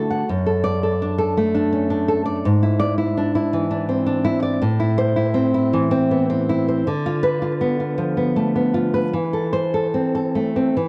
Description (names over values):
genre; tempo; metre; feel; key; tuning
romantic piece for solo classical guitar; 81 BPM; 3/4; uneven beats, rubato; A minor; A4 = 440 Hz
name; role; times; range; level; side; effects
nylon-string guitar; solo; 0.0-10.9 s; F#2 to F#5; -20 LUFS; equal; tape echo
room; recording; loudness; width
small room ambience; dry, close 1970s-style studio recording; -20 LUFS; mono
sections
0.0-10.9 A section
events
none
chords
0.3 D/F#; 2.5 E7/G#; 4.6 Am; 6.9 Bdim/D; 9.1 Am/E